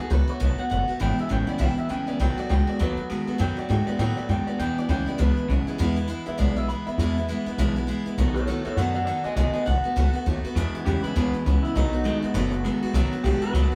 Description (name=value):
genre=rock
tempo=201 BPM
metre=4/4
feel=swing 60% on 8ths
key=E major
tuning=A4 = 439 Hz
part: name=electric guitar through a small old amp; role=melody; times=0.0-13.8 s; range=D#4 to B5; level=-32 LUFS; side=equal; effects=none
part: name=picked steel-string acoustic guitar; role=accompaniment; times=0.0-13.8 s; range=E2 to F#4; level=-30 LUFS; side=equal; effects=none
part: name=upright bass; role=bass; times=0.1-13.7 s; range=F#1 to A2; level=-27 LUFS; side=equal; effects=none
part: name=electric guitar through a small old amp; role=riff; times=1.0-5.8, 10.6-13.8 s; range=E2 to G#3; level=-32 LUFS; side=equal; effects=none
room=light reverb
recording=band playing live in one room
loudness=-25 LUFS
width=mono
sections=0.0-5.8 A section; 5.8-13.8 B section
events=clean electric guitar solo 5.8-13.8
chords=0.0 B7; 1.0 E; 2.2 B7; 4.6 E; 8.2 B7; 10.6 E; 11.8 B7